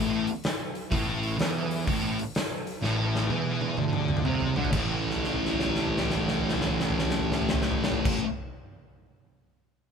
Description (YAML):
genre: blues rock power trio and southern rock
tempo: 126 BPM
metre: 4/4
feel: swing 65% on 8ths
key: unclear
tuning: A4 = 440 Hz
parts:
  - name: thick fuzz guitar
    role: riff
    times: 0.0-8.3 s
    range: A2 to A3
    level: -28 LUFS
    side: left 1 dB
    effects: distortion
  - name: fuzz picked electric bass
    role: bass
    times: 0.0-8.1 s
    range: A1 to E2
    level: -33 LUFS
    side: right 1 dB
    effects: overdrive
  - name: big rock drum kit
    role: drums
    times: 0.3-8.2 s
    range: crash cymbal, hi-hat, kick drum, snare drum, toms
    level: -29 LUFS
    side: equal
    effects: none
room: light reverb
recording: band playing live in one room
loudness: -25 LUFS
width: side -6 dB against mid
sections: 0.0-4.7 A section; 4.7-8.5 B section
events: drum fill 2.8-4.7, 5.0-8.1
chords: 0.0 A5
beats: 0.44 | 0.92 1.39 1.87 2.35 | 2.82 3.30 3.78 4.25 | 4.73 5.21 5.68 6.16 | 6.64 7.11 7.59 8.06